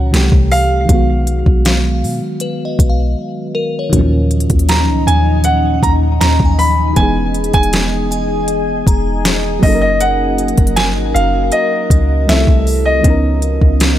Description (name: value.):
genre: contemporary R&B.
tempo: 79 BPM.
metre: 4/4.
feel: straight.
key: Eb minor.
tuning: A4 = 440 Hz.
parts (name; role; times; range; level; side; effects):
warm concert grand piano; melody; 0.0-14.0 s; Eb5 to Cb6; -18 LUFS; equal; ping-pong delay.
mellow FM electric piano; accompaniment; 0.0-14.0 s; Bb2 to Bb4; -18 LUFS; right 1 dB; chorus.
soft 808-style bass; bass; 0.0-14.0 s; E1 to B2; -15 LUFS; equal; none.
glassy synth bell; texture; 0.0-10.0 s; Bb4 to Bb5; -26 LUFS; left 3 dB; chorus, ping-pong delay.
smooth R&B drum kit; drums; 0.1-14.0 s; hi-hat, kick drum, snare drum; -14 LUFS; equal; none.
glassy FM pad; sustained chords; 4.6-14.0 s; Cb4 to G#5; -22 LUFS; left 2 dB; ensemble chorus, built-in reverb, sidechain pumping.
room: little or no reverb.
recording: none.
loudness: -11 LUFS.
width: side -12 dB against mid.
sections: 0.0-14.0 A section.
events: break 3.2-3.9.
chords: 0.1 C6; 0.9 B6; 3.9 Ebm9; 7.0 Emaj7; 9.6 Gb6; 12.3 C6; 13.0 Db13.